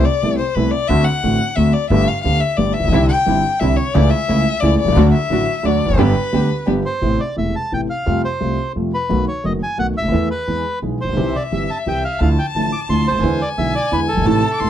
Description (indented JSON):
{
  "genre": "tango",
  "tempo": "175 BPM",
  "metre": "3/4",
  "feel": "rubato",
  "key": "A minor from 7.0 s",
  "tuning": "A4 = 440 Hz",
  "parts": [
    { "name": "rich violin", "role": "second line", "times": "0.0-6.7, 11.2-14.7 s", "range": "B4 to D6", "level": "-21 LUFS", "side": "left 5 dB", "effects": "none" },
    { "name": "warm concert grand piano", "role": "accompaniment", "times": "0.0-14.7 s", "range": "E1 to A4", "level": "-18 LUFS", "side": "equal", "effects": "none" },
    { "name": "upright bass", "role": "bass", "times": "0.0-14.7 s", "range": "E1 to F2", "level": "-20 LUFS", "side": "right 1 dB", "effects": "none" },
    { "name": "warm chamber string section", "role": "stabs", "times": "2.9-6.8 s", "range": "A3 to G4", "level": "-22 LUFS", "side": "right 3 dB", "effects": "none" },
    { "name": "bandoneon", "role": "melody", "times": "6.9-14.7 s", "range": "A4 to D6", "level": "-22 LUFS", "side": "right 1 dB", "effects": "none" }
  ],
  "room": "light reverb",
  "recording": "dark, warm production",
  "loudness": "-15 LUFS",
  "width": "side -10 dB against mid",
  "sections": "0.0-7.0 A section; 7.0-14.7 B section",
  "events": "violin solo 0.0-7.0",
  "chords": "0.0 Amadd9/C; 0.9 D7; 1.9 Gadd9; 2.9 Cadd9; 4.0 A/C#; 5.0 D; 6.0 G; 7.0 Amadd9; 8.1 Fadd9; 9.1 B7; 10.1 Esus4; 10.5 E; 11.2 C; 12.2 Dmadd9; 13.2 E7",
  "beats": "0.22 0.56 | 0.90 1.23 1.57 | 1.91 2.24 2.58 | 2.93 3.27 3.61 | 3.95 4.29 4.62 | 4.96 5.30 5.64 | 5.98 6.32 6.67 | 7.02 7.37 7.72 | 8.06 8.41 8.76 | 9.10 9.44 9.79 | 10.13 10.48 10.82 | 11.18 11.52 11.87 | 12.21 12.55 12.90 | 13.24 13.58 13.92 | 14.27 14.61"
}